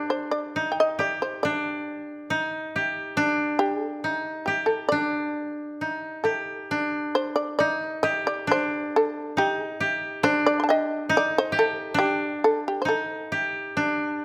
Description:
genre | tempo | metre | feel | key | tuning
japanese traditional, Japanese chamber music | 68 BPM | 2/4 | rubato | D in sen | A4 = 444 Hz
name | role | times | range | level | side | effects
shamisen | melody | 0.0-13.5 s | G4 to C6 | -27 LUFS | equal | none
koto | second line | 0.0-14.2 s | D4 to G4 | -28 LUFS | equal | none
room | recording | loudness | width
light reverb | close, detailed microphones | -25 LUFS | mono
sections
0.0-6.7 A section; 6.7-14.2 B section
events
none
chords
none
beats
0.56 | 1.44 2.32 | 3.18 4.03 | 4.90 5.79 | 6.71 7.60 | 8.49 9.37 | 10.23 11.10 | 11.96 12.85 | 13.76

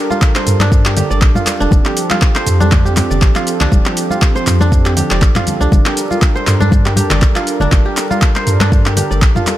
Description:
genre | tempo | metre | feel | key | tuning
afro house | 120 BPM | 4/4 | swing 55% on 16ths | G minor | A4 = 440 Hz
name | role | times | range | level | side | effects
warm analog pad | sustained chords | 0.0-9.6 s | F3 to Bb4 | -20 LUFS | right 2 dB | chorus, vintage 12-bit sampler grit, sidechain pumping
kora | arpeggios | 0.0-9.6 s | D4 to D5 | -20 LUFS | right 2 dB | sidechain pumping, dub echo
deep house drum kit | drums | 0.1-9.6 s | handclaps, hi-hat, shaker, toms | -18 LUFS | equal | none
congas | percussion | 0.1-9.6 s | none | -21 LUFS | left 2 dB | none
electronic kick drum | drums | 0.2-9.3 s | none | -12 LUFS | equal | none
warm sub bass | bass | 0.5-9.3 s | F1 to G2 | -15 LUFS | equal | sidechain pumping
room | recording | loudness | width
little or no reverb | none | -10 LUFS | side -14 dB against mid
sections
0.0-9.6 A section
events
none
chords
0.0 Gm7; 1.7 F; 5.7 Gm7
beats
0.22 0.72 1.22 | 1.72 2.22 2.72 3.22 | 3.72 4.22 4.72 5.22 | 5.72 6.22 6.72 7.22 | 7.72 8.22 8.72 9.22

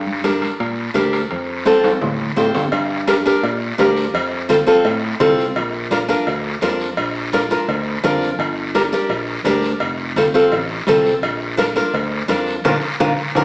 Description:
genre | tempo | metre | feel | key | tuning
latin, cumbia | 169 BPM | 4/4 | straight | G minor | A4 = 440 Hz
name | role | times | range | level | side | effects
fingered electric bass | bass | 0.0-13.4 s | F1 to Bb2 | -24 LUFS | equal | none
congas | percussion | 0.1-13.4 s | none | -29 LUFS | equal | none
nylon-string guitar | accompaniment | 0.2-13.4 s | C4 to Bb4 | -16 LUFS | equal | none
guiro | percussion | 0.2-13.4 s | none | -28 LUFS | equal | none
timbales and cowbell | percussion | 0.2-13.4 s | none | -24 LUFS | equal | none
room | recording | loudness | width
wet large studio reverb, RT60 1.2 s | heard from further back in the room, small speaker sound | -15 LUFS | side -28 dB against mid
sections
0.0-2.7 A section; 2.7-13.4 B section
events
drum fill 1.7-2.7, 12.6-13.4; band accent 12.6-13.4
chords
0.0 Gm; 1.3 F; 2.7 Gm; 4.1 F; 5.6 Bb; 8.4 Gm; 9.8 F; 11.2 Bb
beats
0.25 0.60 0.96 | 1.31 1.67 2.02 2.37 | 2.73 3.08 3.44 3.79 | 4.14 4.50 4.85 5.21 | 5.56 5.92 6.27 6.62 | 6.98 7.33 7.69 8.04 | 8.39 8.75 9.10 9.46 | 9.81 10.17 10.52 10.88 | 11.23 11.59 11.94 12.29 | 12.65 13.00 13.36

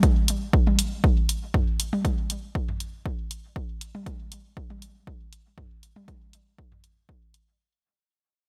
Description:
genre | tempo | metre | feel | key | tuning
techno | 119 BPM | 4/4 | swing 53% on 16ths | none | none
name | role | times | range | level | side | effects
electronic hi-hat | drums | 0.0-7.4 s | none | -32 LUFS | equal | none
electronic kick drum | drums | 0.0-7.2 s | none | -26 LUFS | equal | none
electronic toms | percussion | 0.7-6.8 s | none | -33 LUFS | equal | sidechain pumping on toms, dub echo
room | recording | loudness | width
light reverb, digital ambience | bright 1980s-style digital production | -26 LUFS | mono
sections
0.0-7.6 A section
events
fade-out 0.0-7.6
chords
none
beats
0.03 0.53 1.04 | 1.54 2.05 2.55 3.06 | 3.56 4.06 4.57 5.07 | 5.58 6.08 6.58 7.09

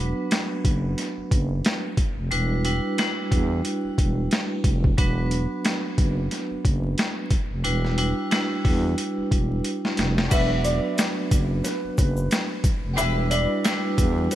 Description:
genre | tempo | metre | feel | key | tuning
hip hop, boom-bap hip-hop | 90 BPM | 4/4 | swing 57% on 16ths | E minor | A4 = 441 Hz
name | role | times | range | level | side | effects
vibraphone with hard mallets | accompaniment | 0.0-14.3 s | F#3 to B4 | -27 LUFS | right 1 dB | none
growling FM bass | bass | 0.0-14.3 s | E1 to E2 | -25 LUFS | equal | none
boom bap sampler-style drum kit | drums | 0.3-14.3 s | crash cymbal, hi-hat, kick drum, snare drum | -24 LUFS | equal | overdrive
dark upright piano | melody | 10.3-14.3 s | B4 to E5 | -30 LUFS | equal | lush chorus, ping-pong delay
warm studio string section | stabs | 10.3-13.3 s | D4 to B4 | -34 LUFS | left 1 dB | ping-pong delay
egg shaker | percussion | 10.3-14.3 s | none | -39 LUFS | left 6 dB | none
room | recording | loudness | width
light reverb, small room ambience | bright 1980s-style digital production, vinyl crackle | -21 LUFS | side -13 dB against mid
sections
0.0-10.3 A section; 10.3-14.3 B section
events
drum fill 9.6-10.3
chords
0.0 Bm/E; 2.3 Em7; 5.0 Bm/E; 7.6 Em7; 10.3 Bm/E; 13.0 Em7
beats
0.31 0.98 1.65 | 2.31 2.98 3.65 4.31 | 4.98 5.65 6.31 6.98 | 7.65 8.31 8.98 9.65 | 10.31 10.98 11.65 12.31 | 12.98 13.65 14.31

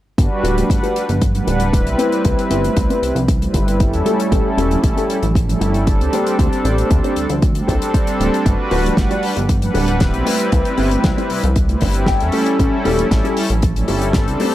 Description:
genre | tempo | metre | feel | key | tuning
nu-disco, nu disco | 116 BPM | 4/4 | straight | G major | A4 = 438 Hz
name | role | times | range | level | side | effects
warm analog pad | accompaniment | 0.2-14.5 s | G3 to F#5 | -19 LUFS | equal | chorus, tremolo, sidechain pumping, tape echo
chorused synth bass | bass | 0.2-14.4 s | D1 to E2 | -19 LUFS | equal | none
damped 70s drum kit | drums | 0.2-14.5 s | hi-hat, snare drum | -26 LUFS | left 2 dB | studio ambience
electronic kick drum | drums | 0.2-14.3 s | none | -17 LUFS | equal | studio ambience
mellow electric guitar | riff | 0.4-14.5 s | C4 to G5 | -22 LUFS | left 3 dB | analog chorus, low-pass filter, tape echo
congas | percussion | 0.6-14.5 s | none | -26 LUFS | right 4 dB | none
room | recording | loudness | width
small room ambience | dry, gritty hardware recording, faint mains hum | -14 LUFS | side -14 dB against mid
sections
0.2-14.5 A section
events
filter sweep on clean electric guitar 0.2-14.5; clean electric guitar fill 11.8-12.6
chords
0.2 Gmaj7; 2.0 Cmaj7; 4.1 A7; 6.1 D7sus4; 8.5 Gmaj7; 10.3 Cmaj7; 12.3 A7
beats
| 0.18 0.70 1.22 1.73 | 2.25 2.77 3.29 3.80 | 4.32 4.84 5.35 5.87 | 6.39 6.91 7.42 7.94 | 8.46 8.97 9.49 10.01 | 10.53 11.04 11.56 12.08 | 12.60 13.11 13.63 14.15

